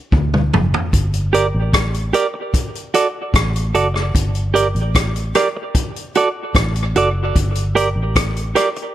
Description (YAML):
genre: dub reggae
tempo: 75 BPM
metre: 4/4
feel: straight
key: G harmonic minor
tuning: A4 = 439 Hz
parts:
  - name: vintage muted fingered electric bass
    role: bass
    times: 0.1-8.5 s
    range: F#1 to D2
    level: -19 LUFS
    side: equal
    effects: none
  - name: vintage drum kit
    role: drums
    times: 0.1-8.9 s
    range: hi-hat, kick drum, rim click, toms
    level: -18 LUFS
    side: equal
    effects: none
  - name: clean electric guitar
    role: accompaniment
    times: 1.3-8.8 s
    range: F#4 to D5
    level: -18 LUFS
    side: right 4 dB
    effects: tape echo
room: light reverb, small room ambience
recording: lossy compression artefacts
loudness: -15 LUFS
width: side -12 dB against mid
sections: 0.9-8.9 A section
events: break 0.0-0.9; drum fill 0.1-0.9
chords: 0.0 D; 0.9 Gm; 2.5 D; 4.1 Gm; 5.8 D; 7.4 Gm